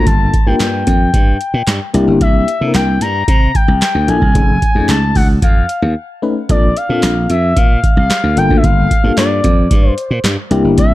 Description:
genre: early-eighties boogie funk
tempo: 112 BPM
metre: 4/4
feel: straight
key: G dorian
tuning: A4 = 442 Hz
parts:
  - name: expressive portamento lead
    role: melody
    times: 0.0-10.9 s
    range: D5 to Bb5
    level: -18 LUFS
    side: left 2 dB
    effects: chorus, tape echo
  - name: FM electric piano with tremolo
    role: accompaniment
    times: 0.0-10.9 s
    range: A3 to B4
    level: -17 LUFS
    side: left 4 dB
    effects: none
  - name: slap bass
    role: bass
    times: 0.0-10.9 s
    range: F1 to C3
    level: -15 LUFS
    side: equal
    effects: none
  - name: booming analog drum machine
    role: drums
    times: 0.1-10.9 s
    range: handclaps, hi-hat, kick drum, snare drum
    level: -13 LUFS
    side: equal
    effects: none
room: little or no reverb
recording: dark, warm production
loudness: -10 LUFS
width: side -16 dB against mid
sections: 0.0-6.5 A section; 6.5-10.9 A section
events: break 6.0-6.5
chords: 0.0 Gm7; 1.9 C9; 4.4 F7alt; 6.5 Bbmaj9; 8.4 Gm7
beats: | 0.07 0.60 1.14 1.67 | 2.21 2.75 3.28 3.82 | 4.35 4.89 5.42 5.96 | 6.50 7.03 7.57 8.10 | 8.64 9.17 9.71 10.24 | 10.78

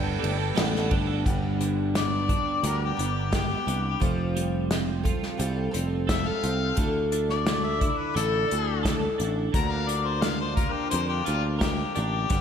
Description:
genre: folk rock and heartland rock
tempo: 87 BPM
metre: 4/4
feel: straight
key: unclear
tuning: A4 = 440 Hz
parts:
  - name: picked twelve-string acoustic guitar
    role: accompaniment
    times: 0.0-12.4 s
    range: G2 to B4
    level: -32 LUFS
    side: left 3 dB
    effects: slapback echo
  - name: warm studio string section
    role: sustained chords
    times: 0.0-1.2, 12.3-12.4 s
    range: D4 to B4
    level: -39 LUFS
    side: left 3 dB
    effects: none
  - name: twelve-string electric guitar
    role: riff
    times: 0.0-12.4 s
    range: G2 to Bb4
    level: -33 LUFS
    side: right 12 dB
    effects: analog chorus
  - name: picked electric bass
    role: bass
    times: 0.0-12.4 s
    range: F1 to F2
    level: -28 LUFS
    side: equal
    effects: none
  - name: unplugged drum kit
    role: drums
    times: 0.2-12.4 s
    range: hi-hat, kick drum, ride cymbal, snare drum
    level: -28 LUFS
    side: equal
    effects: none
  - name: warm harmonica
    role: second line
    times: 2.0-12.4 s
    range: F4 to Bb5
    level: -30 LUFS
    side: left 6 dB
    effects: slapback echo, analog delay
room: moderate lush hall reverb, RT60 1.9 s, small room ambience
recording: big arena sound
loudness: -23 LUFS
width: side -8 dB against mid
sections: 0.0-1.3 A section; 1.3-12.4 B section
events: harmonica solo 1.3-12.4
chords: 0.0 Gadd9; 1.3 G; 4.0 Fadd9; 6.8 Dsus2; 9.5 Bb/D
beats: 0.57 | 1.25 1.94 2.63 3.32 | 4.01 4.70 5.39 6.09 | 6.78 7.47 8.16 8.85 | 9.55 10.24 10.93 11.62 | 12.31

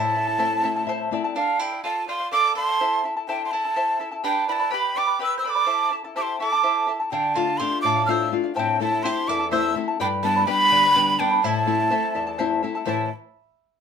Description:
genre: andean folk, Andean ensemble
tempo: 84 BPM (dotted quarters)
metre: 6/8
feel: straight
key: A minor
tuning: A4 = 440 Hz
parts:
  - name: breathy quena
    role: melody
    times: 0.0-13.1 s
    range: F5 to F6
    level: -22 LUFS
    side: right 2 dB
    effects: none
  - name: mandolin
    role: second line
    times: 0.0-13.1 s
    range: C4 to C5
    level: -28 LUFS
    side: right 5 dB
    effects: none
  - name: charango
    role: accompaniment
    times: 0.0-13.1 s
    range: E4 to B5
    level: -27 LUFS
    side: left 2 dB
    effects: none
  - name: nylon-string guitar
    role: accompaniment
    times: 0.0-1.4, 7.1-13.1 s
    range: E2 to E5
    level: -26 LUFS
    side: left 8 dB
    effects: none
room: moderate studio reverb, RT60 0.6 s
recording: minimal, uncompressed stereo recording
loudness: -20 LUFS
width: side -7 dB against mid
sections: 0.0-1.4 A section; 1.4-12.9 A section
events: nylon-string guitar fill 0.6-1.4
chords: 0.0 Am; 1.4 Dm; 2.8 Am; 4.2 G; 5.7 Am; 7.1 Dm; 8.6 Am; 10.0 G; 11.4 Am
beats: 0.64 | 1.36 2.08 | 2.80 3.52 | 4.25 4.96 | 5.68 6.40 | 7.12 7.84 | 8.56 9.28 | 10.00 10.71 | 11.43 12.15 | 12.87

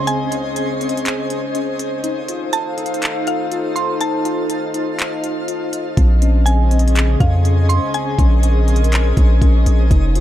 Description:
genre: hip hop, atmospheric cloud-rap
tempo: 122 BPM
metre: 4/4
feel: half-time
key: Bb minor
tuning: A4 = 444 Hz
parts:
  - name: mallet-like synth pluck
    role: melody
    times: 0.0-8.9 s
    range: F5 to C6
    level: -25 LUFS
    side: right 1 dB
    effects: chorus, low-pass filter, digital delay
  - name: dark analog pad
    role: sustained chords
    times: 0.0-10.2 s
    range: Db3 to F5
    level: -23 LUFS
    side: equal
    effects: chorus, sidechain pumping
  - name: muted felt-like synth keys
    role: arpeggios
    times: 0.0-10.2 s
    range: C4 to F4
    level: -25 LUFS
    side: left 5 dB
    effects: chorus, low-pass filter, digital delay
  - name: twinkling granular texture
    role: texture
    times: 0.0-10.2 s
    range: Db4 to A5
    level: -28 LUFS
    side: equal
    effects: built-in reverb
  - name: smooth R&B drum kit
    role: drums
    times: 0.1-10.2 s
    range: handclaps, hi-hat, kick drum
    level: -18 LUFS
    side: equal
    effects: none
  - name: long sustained 808-style bass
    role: bass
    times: 6.0-10.2 s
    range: F1 to F2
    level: -13 LUFS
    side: equal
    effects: none
room: digital ambience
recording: dark, warm production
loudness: -14 LUFS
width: side -12 dB against mid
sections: 0.0-10.2 A section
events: break 0.0-6.0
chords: 0.0 Dbmaj7sus2; 2.0 F7; 6.0 Bbm11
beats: | 0.07 0.56 1.06 1.55 | 2.04 2.53 3.02 3.52 | 4.01 4.50 4.99 5.48 | 5.97 6.47 6.96 7.45 | 7.94 8.43 8.93 9.42 | 9.91

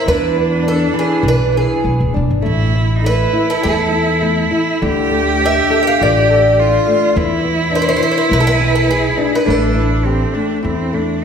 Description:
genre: fado-style ballad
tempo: 102 BPM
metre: 4/4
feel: rubato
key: A minor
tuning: A4 = 440 Hz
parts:
  - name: picked twelve-string acoustic guitar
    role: melody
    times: 0.0-11.2 s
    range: G#4 to G5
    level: -17 LUFS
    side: equal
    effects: none
  - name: bright cello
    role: second line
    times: 0.0-11.2 s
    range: C4 to G4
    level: -18 LUFS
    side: right 3 dB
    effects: none
  - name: flamenco guitar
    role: accompaniment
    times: 0.0-11.2 s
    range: D3 to A4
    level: -19 LUFS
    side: left 4 dB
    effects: none
  - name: upright bass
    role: bass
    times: 0.1-11.2 s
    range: D1 to E2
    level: -18 LUFS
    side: equal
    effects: none
room: wet scoring stage reverb, RT60 1.9 s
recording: heard from further back in the room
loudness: -12 LUFS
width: side -7 dB against mid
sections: 0.0-11.2 A section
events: none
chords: 0.1 E7; 2.5 A5; 4.8 Dm; 7.2 E5; 9.5 A5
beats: | 0.08 0.66 1.24 1.85 | 2.46 3.06 3.66 4.25 | 4.84 5.43 6.02 6.60 | 7.17 7.74 8.32 8.89 | 9.47 10.05 10.64 11.24

